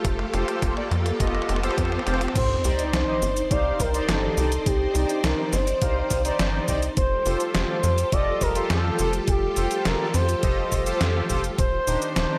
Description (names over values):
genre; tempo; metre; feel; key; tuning
synthwave; 104 BPM; 4/4; straight; C dorian; A4 = 441 Hz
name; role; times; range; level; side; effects
string machine, full ensemble; sustained chords; 0.0-12.4 s; Eb3 to D5; -33 LUFS; equal; ensemble chorus, sidechain pumping
tight sequencer bass; bass; 0.0-12.3 s; Eb1 to F2; -28 LUFS; equal; sidechain pumping
detuned 8-bit digital drum machine; drums; 0.0-12.3 s; cabasa, crash cymbal, hi-hat, snare drum, toms; -32 LUFS; equal; high-pass filter on hats, studio reverb, high-pass filter on toms, high-pass filter on cymbals, high-pass filter on perc, high-pass filter on snare, gated reverb
electronic kick drum; drums; 0.0-11.7 s; none; -29 LUFS; equal; studio reverb
riser and sub drop; sound effects; 0.0-4.7 s; none; -35 LUFS; equal; none
analog synth brass; stabs; 0.3-12.4 s; D4 to F5; -32 LUFS; equal; chorus, cassette tape, tape echo
expressive portamento lead; melody; 2.4-12.4 s; G4 to D5; -29 LUFS; equal; chorus, tape echo
room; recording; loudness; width
light reverb, digital ambience; none; -23 LUFS; mono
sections
0.0-2.4 A section; 2.4-12.4 B section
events
drum fill 0.0-2.4; riser 0.0-2.4; impact 2.4-4.7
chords
0.0 Fadd9; 2.4 Cmadd9; 7.0 Fadd9; 11.6 Cmadd9/Eb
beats
| 0.05 0.62 1.20 1.78 | 2.35 2.93 3.51 4.08 | 4.66 5.24 5.82 6.39 | 6.97 7.55 8.12 8.70 | 9.28 9.85 10.43 11.01 | 11.59 12.16